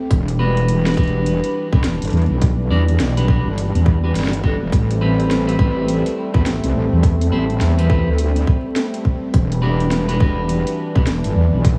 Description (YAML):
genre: glitch hop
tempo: 104 BPM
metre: 4/4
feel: swing 61% on 16ths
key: A dorian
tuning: A4 = 439 Hz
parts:
  - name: warm analog pad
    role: sustained chords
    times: 0.0-11.8 s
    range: E3 to D4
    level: -25 LUFS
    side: equal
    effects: chorus, sidechain pumping
  - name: wobble bass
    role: bass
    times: 0.1-11.8 s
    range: E1 to E2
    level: -20 LUFS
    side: equal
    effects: chorus, overdrive
  - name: drum and bass drum kit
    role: drums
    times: 0.1-11.8 s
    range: hi-hat, snare drum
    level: -30 LUFS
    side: equal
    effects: studio reverb
  - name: electronic kick drum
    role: drums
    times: 0.1-11.8 s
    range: none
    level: -18 LUFS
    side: equal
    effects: studio reverb
  - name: clean electric guitar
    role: stabs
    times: 0.4-11.0 s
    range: C4 to D5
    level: -28 LUFS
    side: equal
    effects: sidechain pumping, tape echo
room: light reverb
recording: vinyl crackle, small room ambience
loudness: -18 LUFS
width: mono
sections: 0.0-11.8 A section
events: none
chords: 0.1 Em7; 4.7 Am9; 9.3 Em7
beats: | 0.11 0.68 1.26 1.84 | 2.42 2.99 3.57 4.15 | 4.72 5.30 5.88 6.45 | 7.03 7.61 8.18 8.76 | 9.34 9.91 10.49 11.07 | 11.65